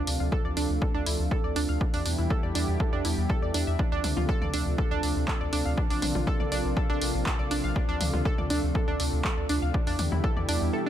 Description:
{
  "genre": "melodic techno",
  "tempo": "121 BPM",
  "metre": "4/4",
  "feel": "straight",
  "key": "D minor",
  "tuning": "A4 = 441 Hz",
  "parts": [
    { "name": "lush unison pad", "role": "sustained chords", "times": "0.0-10.9 s", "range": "B2 to G4", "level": "-33 LUFS", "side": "equal", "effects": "chorus, sidechain pumping" },
    { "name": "analog pluck", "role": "arpeggios", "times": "0.0-10.9 s", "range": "D4 to F5", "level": "-31 LUFS", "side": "right 2 dB", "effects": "chorus, sidechain pumping, dub echo" },
    { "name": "round analog bass", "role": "bass", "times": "0.0-10.7 s", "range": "Bb1 to E2", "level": "-29 LUFS", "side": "equal", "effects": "sidechain pumping" },
    { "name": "punchy analog drum machine", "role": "drums", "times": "0.1-10.6 s", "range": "handclaps, hi-hat, toms", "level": "-34 LUFS", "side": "left 1 dB", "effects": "sidechain pumping on hats, sidechain pumping on toms" },
    { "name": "electronic kick drum", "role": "drums", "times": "0.3-10.3 s", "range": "none", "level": "-28 LUFS", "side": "equal", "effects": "none" }
  ],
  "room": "digital ambience",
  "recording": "none",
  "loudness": "-25 LUFS",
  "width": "side -11 dB against mid",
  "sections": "0.0-10.9 A section",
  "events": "none",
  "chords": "0.0 Dm7; 1.8 Em; 3.8 Dm7; 5.8 Bbadd9; 7.8 Dm7; 9.7 Em"
}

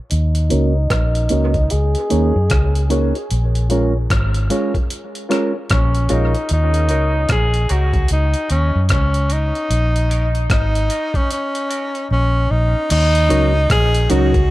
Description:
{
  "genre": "dub reggae",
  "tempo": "75 BPM",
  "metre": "4/4",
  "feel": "swing 61% on 16ths",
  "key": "Eb minor",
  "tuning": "A4 = 440 Hz",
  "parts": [
    { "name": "breathy tenor saxophone", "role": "melody", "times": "0.1-14.5 s", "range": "Db4 to Ab4", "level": "-21 LUFS", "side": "equal", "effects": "low-pass filter, dub echo" },
    { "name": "vintage muted fingered electric bass", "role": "bass", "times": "0.1-14.5 s", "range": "Ab1 to Gb2", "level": "-16 LUFS", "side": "equal", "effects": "none" },
    { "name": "breakbeat sampler-style drum kit", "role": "drums", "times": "0.1-14.5 s", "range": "crash cymbal, hi-hat, kick drum, rim click", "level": "-20 LUFS", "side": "equal", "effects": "none" },
    { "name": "mellow electric guitar", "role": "accompaniment", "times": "0.5-14.4 s", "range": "Gb3 to Bb4", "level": "-24 LUFS", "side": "right 5 dB", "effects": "high-pass filter, low-pass filter, dub echo" },
    { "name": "reed electric piano", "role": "stabs", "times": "0.5-14.4 s", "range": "Eb4 to Db5", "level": "-26 LUFS", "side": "left 4 dB", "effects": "high-pass filter, low-pass filter, dub echo" },
    { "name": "cowbell", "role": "percussion", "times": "0.9-1.1 s", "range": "none", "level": "-34 LUFS", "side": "right 5 dB", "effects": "dub echo" }
  ],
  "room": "light reverb",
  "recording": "dark, warm production",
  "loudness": "-14 LUFS",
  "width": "side -17 dB against mid",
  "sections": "0.1-12.9 A section; 12.9-14.5 B section",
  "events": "part muted 0.1-12.9; filter sweep 0.1-12.9; drums muted 12.1-12.9",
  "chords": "0.1 Ebm7; 3.3 Bbm7; 6.5 Ebm7; 9.7 Bbm7; 12.9 Ebm7"
}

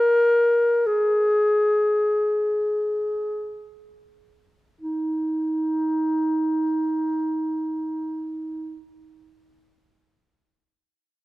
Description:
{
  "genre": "classical, free, expressive piece for unaccompanied clarinet",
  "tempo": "free time",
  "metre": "none",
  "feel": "none",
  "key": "unclear",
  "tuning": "A4 = 445 Hz",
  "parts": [
    { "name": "mellow clarinet", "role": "solo", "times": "0.0-8.8 s", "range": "Eb4 to Bb4", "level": "-20 LUFS", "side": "equal", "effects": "none" }
  ],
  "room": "moderate concert hall reverb, RT60 1.9 s",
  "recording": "none",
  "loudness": "-20 LUFS",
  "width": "side -18 dB against mid",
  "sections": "0.0-4.8 A section; 4.8-10.6 B section",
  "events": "slowing down 0.0-4.8",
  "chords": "none"
}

